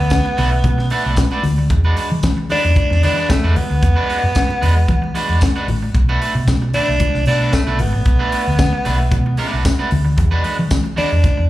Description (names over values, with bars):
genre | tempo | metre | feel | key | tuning
disco | 113 BPM | 4/4 | straight | B dorian | A4 = 440 Hz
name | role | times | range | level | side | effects
raspy tenor saxophone | melody | 0.0-11.5 s | A3 to D4 | -20 LUFS | equal | slapback echo
electric guitar at the edge of break-up | accompaniment | 0.0-11.4 s | G#3 to B4 | -23 LUFS | right 3 dB | wide subtle chorus, slapback echo
hollow-body short-scale fingered electric bass | bass | 0.0-11.5 s | G#1 to E3 | -16 LUFS | equal | none
tight funk drum kit | drums | 0.1-11.4 s | hi-hat, kick drum, snare drum | -19 LUFS | equal | none
congas | percussion | 0.1-11.4 s | none | -26 LUFS | left 4 dB | slapback echo
tambourine | percussion | 0.1-10.8 s | none | -33 LUFS | left 2 dB | none
room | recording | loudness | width
little or no reverb | live gig heard through the venue's PA, club reverb | -14 LUFS | side -16 dB against mid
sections
0.0-11.5 A section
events
none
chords
0.0 Bm7; 1.7 E9; 5.9 Bm7; 10.2 E9